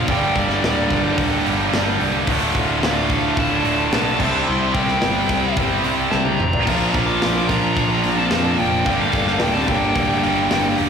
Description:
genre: heavy metal.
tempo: 109 BPM.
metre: 4/4.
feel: straight.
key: unclear.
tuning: A4 = 440 Hz.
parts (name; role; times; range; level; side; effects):
high-gain lead guitar; melody; 0.0-10.7 s; D5 to D6; -24 LUFS; left 2 dB; distortion.
high-gain lead guitar; second line; 0.0-10.8 s; G3 to F4; -29 LUFS; left 1 dB; distortion.
pipe organ, trumpet; sustained chords; 0.0-10.9 s; D4 to Bb5; -32 LUFS; equal; none.
distorted electric guitar; riff; 0.0-10.9 s; D2 to C5; -23 LUFS; right 1 dB; overdrive.
heavy high-gain guitar; riff; 0.0-10.9 s; D2 to C4; -23 LUFS; right 6 dB; distortion.
scooped high-gain guitar; riff; 0.0-10.9 s; D2 to G3; -26 LUFS; left 6 dB; distortion.
fuzz picked electric bass; bass; 0.0-10.9 s; D1 to F2; -25 LUFS; equal; overdrive.
tight metal drum kit; drums; 0.1-10.9 s; crash cymbal, hi-hat, kick drum, snare drum, toms; -24 LUFS; left 1 dB; none.
room: wet church reverb, RT60 2.7 s.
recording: rough rehearsal-room recording, warm saturation.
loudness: -16 LUFS.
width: side -7 dB against mid.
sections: 0.0-10.9 A section.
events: drum fill 6.1-6.7.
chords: 0.1 Gm; 2.3 Dm; 4.2 C; 6.7 Bb; 8.9 Gm.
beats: | 0.09 0.64 1.18 1.73 | 2.28 2.83 3.38 3.93 | 4.48 5.03 5.57 6.12 | 6.67 7.22 7.77 8.32 | 8.87 9.41 9.96 10.51.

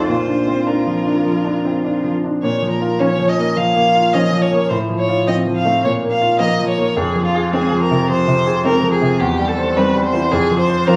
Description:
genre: quick classical-period movement for piano quartet.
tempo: 106 BPM.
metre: 4/4.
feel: straight.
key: Bb minor.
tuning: A4 = 440 Hz.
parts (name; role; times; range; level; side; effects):
rich violin; melody; 0.0-11.0 s; F4 to F5; -21 LUFS; equal; none.
rich cello; second line; 0.0-11.0 s; F3 to F4; -27 LUFS; equal; none.
bright grand piano; accompaniment; 0.0-11.0 s; E2 to C5; -19 LUFS; equal; none.
warm violin; second line; 3.0-11.0 s; Bb3 to Db4; -27 LUFS; equal; none.
room: wet recital hall reverb, RT60 1.3 s.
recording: small room ambience.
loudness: -17 LUFS.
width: mono.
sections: 0.0-2.4 A section; 2.4-11.0 B section.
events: none.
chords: 0.1 Bb; 2.4 Bbm; 4.7 F/A; 5.8 Bb5; 7.0 Fm; 9.2 C/E; 10.3 F5.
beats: | 0.08 0.67 1.26 1.85 | 2.43 3.00 3.57 4.14 | 4.70 5.27 5.83 6.40 | 6.96 7.54 8.10 8.65 | 9.21 9.77 10.32 10.88.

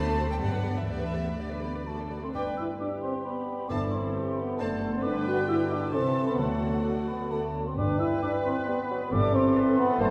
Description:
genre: quick classical-period movement for symphony orchestra.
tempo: 133 BPM.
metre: 3/4.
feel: rubato.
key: G major.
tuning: A4 = 445 Hz.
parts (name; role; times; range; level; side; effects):
warm chamber violin section; melody; 0.0-10.1 s; A4 to A5; -45 LUFS; equal; none.
warm chamber violin section; second line; 0.0-10.1 s; A4 to A5; -43 LUFS; equal; none.
warm chamber viola section; accompaniment; 0.0-10.1 s; A3 to C5; -39 LUFS; equal; none.
dark chamber cello section; bass; 0.0-10.1 s; F#2 to A3; -40 LUFS; equal; none.
dark symphonic double bass section; bass; 0.0-10.1 s; F#1 to G2; -36 LUFS; equal; none.
mellow hollow silver concert flute; second line; 1.6-10.1 s; A5 to F#6; -38 LUFS; equal; none.
mellow French horn section; sustained chords; 1.6-10.1 s; A3 to F#4; -31 LUFS; equal; none.
clear clarinet; second line; 2.3-10.1 s; A4 to C5; -40 LUFS; equal; none.
warm bassoon; accompaniment; 2.3-10.1 s; D3 to G3; -39 LUFS; equal; none.
timpani; percussion; 2.3-8.4 s; G2 to D3; -41 LUFS; equal; none.
room: wet scoring stage reverb, RT60 2.2 s.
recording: heard from further back in the room.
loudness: -28 LUFS.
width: mono.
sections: 0.0-2.4 A section; 2.4-10.1 B section.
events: none.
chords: 0.4 G; 0.9 G/D; 1.9 D; 2.4 G; 4.6 D7/F#; 5.0 G; 5.9 Am/C; 6.4 D; 7.8 G; 9.1 Am7/G.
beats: 0.41 | 0.89 1.39 1.87 | 2.35 2.81 3.26 | 3.71 4.16 4.60 | 5.04 5.49 5.93 | 6.39 6.85 7.31 | 7.77 8.23 8.67 | 9.12 9.57 10.00.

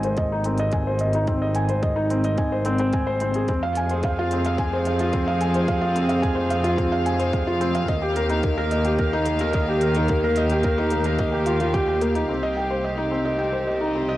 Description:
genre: piano and strings electronica.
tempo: 109 BPM.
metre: 4/4.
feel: straight.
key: C minor.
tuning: A4 = 440 Hz.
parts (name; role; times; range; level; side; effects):
felt-muted upright piano; riff; 0.0-14.2 s; Bb3 to Ab5; -23 LUFS; equal; low-pass filter, cassette tape, analog delay.
clear chamber double bass section; bass; 0.0-14.2 s; Ab1 to F2; -25 LUFS; equal; sidechain pumping.
electronic hi-hat; drums; 0.0-12.3 s; none; -42 LUFS; right 2 dB; cassette tape.
electronic kick drum; drums; 0.2-11.8 s; none; -25 LUFS; equal; cassette tape.
bright chamber string section; sustained chords; 3.5-14.2 s; C3 to F5; -27 LUFS; equal; cassette tape.
room: moderate spring reverb, RT60 1.6 s.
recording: home recording on cassette.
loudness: -20 LUFS.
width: side -15 dB against mid.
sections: 0.0-12.3 A section; 12.3-14.2 B section.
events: none.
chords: 0.0 Ab; 3.5 Fm; 7.9 Ebadd9; 12.3 Cm.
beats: 0.18 0.73 | 1.28 1.83 2.38 2.93 | 3.48 4.03 4.58 5.13 | 5.68 6.24 6.79 7.34 | 7.89 8.44 8.99 9.54 | 10.09 10.64 11.19 11.74 | 12.29 12.84 13.39 13.94.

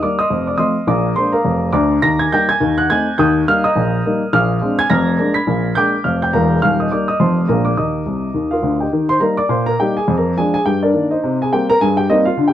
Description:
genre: jazz, stride piano.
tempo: 209 BPM.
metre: 4/4.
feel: swing 58% on 8ths.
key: Eb major.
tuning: A4 = 440 Hz.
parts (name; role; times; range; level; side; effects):
warm upright piano; solo; 0.0-12.5 s; Eb1 to Cb7; -14 LUFS; equal; none.
room: moderate studio reverb, RT60 0.7 s.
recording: none.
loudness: -14 LUFS.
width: side -11 dB against mid.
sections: 0.0-8.9 A section; 8.9-12.5 B section.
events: upright piano fill 8.1-8.9.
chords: 0.3 F7; 0.9 Bb7; 2.0 Eb; 2.6 Ebdim7; 3.2 Eb; 4.3 Bb9; 4.9 Bb7/F; 5.5 Bb7b9; 6.6 Eb; 7.2 F7; 7.5 Bb7; 7.8 Eb; 10.1 Ddim/F; 10.7 Eb/G; 11.2 Cm7.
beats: 0.02 0.31 0.59 | 0.88 1.17 1.46 1.74 | 2.03 2.32 2.60 2.89 | 3.18 3.47 3.75 4.04 | 4.33 4.62 4.90 5.19 | 5.48 5.77 6.05 6.34 | 6.63 6.92 7.20 7.49 | 7.78 8.07 8.36 8.64 | 8.93 9.22 9.50 9.79 | 10.08 10.37 10.65 10.94 | 11.23 11.51 11.80 12.09 | 12.37.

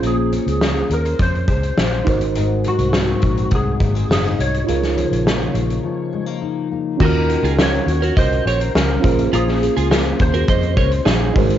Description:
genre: indie pop, bedroom pop.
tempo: 103 BPM.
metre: 4/4.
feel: straight.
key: unclear.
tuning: A4 = 439 Hz.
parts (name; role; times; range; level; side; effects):
clean lap steel guitar; melody; 0.0-11.0 s; Gb4 to Db5; -25 LUFS; equal; ensemble chorus, cassette tape, tape echo.
fingerpicked steel-string acoustic guitar; accompaniment; 0.0-11.6 s; Ab2 to C5; -23 LUFS; left 7 dB; lush chorus, vibrato effect, cassette tape.
reed electric piano; accompaniment; 0.0-11.6 s; Db4 to C5; -24 LUFS; right 8 dB; cassette tape.
vintage muted fingered electric bass; bass; 0.0-11.6 s; Gb1 to F2; -20 LUFS; equal; none.
loose indie drum kit; drums; 0.0-11.6 s; crash cymbal, hi-hat, kick drum, snare drum; -20 LUFS; equal; cassette tape.
clean electric guitar; second line; 7.0-11.5 s; Db4 to Eb5; -23 LUFS; right 7 dB; analog chorus, cassette tape, tape echo.
room: light reverb, small room ambience.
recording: home recording on cassette, nothing above 7.6 kHz.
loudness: -15 LUFS.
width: side -11 dB against mid.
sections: 0.0-7.0 A section; 7.0-11.6 B section.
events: break 5.8-7.0.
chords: 0.0 Bbm9; 2.1 Ab7; 4.7 Db69; 7.0 Bbm9.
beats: | 0.03 0.61 1.19 1.77 | 2.35 2.94 3.52 4.10 | 4.68 5.26 5.84 6.42 | 7.00 7.59 8.17 8.75 | 9.33 9.91 10.49 11.07.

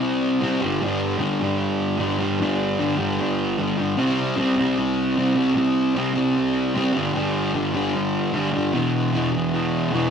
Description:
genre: rock.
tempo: 151 BPM.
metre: 4/4.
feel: straight.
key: unclear.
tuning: A4 = 440 Hz.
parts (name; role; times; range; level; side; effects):
fuzz guitar; solo; 0.0-10.1 s; E2 to C4; -20 LUFS; equal; distortion.
room: moderate small room reverb, RT60 0.5 s.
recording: rough rehearsal-room recording, tube saturation.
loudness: -20 LUFS.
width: side -7 dB against mid.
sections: 0.0-10.1 A section.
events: none.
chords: 0.0 C5; 0.6 G5; 4.0 C5; 7.0 G5; 8.7 E5.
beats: 0.39 | 0.79 1.19 1.59 1.99 | 2.39 2.78 3.18 3.58 | 3.98 4.38 4.77 5.17 | 5.57 5.96 6.36 6.76 | 7.15 7.55 7.95 8.34 | 8.74 9.13 9.53 9.93.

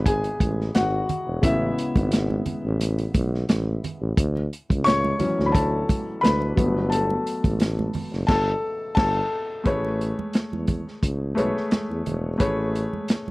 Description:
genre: lush 1970s-style soul.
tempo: 88 BPM.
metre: 4/4.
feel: swing 54% on 16ths.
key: A major.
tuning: A4 = 440 Hz.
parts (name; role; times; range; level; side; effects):
warm grand piano; accompaniment; 0.0-13.3 s; C#3 to C#6; -25 LUFS; left 2 dB; none.
warm tuba; bass; 0.0-13.3 s; E1 to E2; -26 LUFS; equal; none.
vintage drum kit; drums; 0.1-13.3 s; crash cymbal, hi-hat, kick drum, snare drum; -22 LUFS; equal; none.
congas; percussion; 0.1-13.3 s; none; -33 LUFS; right 4 dB; none.
room: little or no reverb.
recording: dry, close 1970s-style studio recording.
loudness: -21 LUFS.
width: side -22 dB against mid.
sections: 0.0-9.7 A section; 9.7-13.3 B section.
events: grand piano solo 0.0-9.7; band accent 8.3-9.7.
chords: 0.0 Amaj9; 4.2 Dmaj9; 6.6 Gmaj9; 9.7 Amaj9.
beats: 0.06 0.74 | 1.43 2.12 2.80 3.49 | 4.17 4.86 5.54 6.23 | 6.91 7.60 8.28 8.97 | 9.66 10.34 11.03 11.72 | 12.41 13.09.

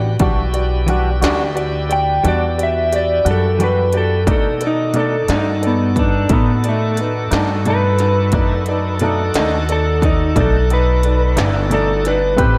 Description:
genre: slow blues.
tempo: 59 BPM (dotted quarters).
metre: 12/8.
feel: straight.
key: unclear.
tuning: A4 = 440 Hz.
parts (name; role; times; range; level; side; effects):
bright upright piano; accompaniment; 0.0-12.6 s; C4 to D#5; -25 LUFS; equal; slapback echo.
bright tonewheel organ; sustained chords; 0.0-12.6 s; D#3 to F#5; -32 LUFS; equal; slow rotary speaker, overdrive.
upright bass; bass; 0.0-12.6 s; G1 to B2; -21 LUFS; equal; none.
clean electric guitar; accompaniment; 0.2-12.6 s; B2 to B4; -26 LUFS; equal; harmonic tremolo, slapback echo.
industrial drum kit; drums; 0.2-12.5 s; hi-hat, kick drum, snare drum; -23 LUFS; equal; none.
electric slide guitar; melody; 1.9-12.6 s; A3 to G5; -21 LUFS; equal; none.
bright saxophone section; sustained chords; 4.3-12.6 s; C4 to B4; -31 LUFS; equal; none.
room: moderate lush hall reverb, RT60 2.7 s.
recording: big arena sound.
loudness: -16 LUFS.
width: mono.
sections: 0.0-12.6 A section.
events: electric slide guitar solo 0.0-12.6; kick and snare drop out 2.2-4.3.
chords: 0.0 Em9; 4.3 B7#9.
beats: | 0.21 1.22 2.24 3.25 | 4.27 5.29 6.30 7.32 | 8.33 9.34 10.36 11.37 | 12.38.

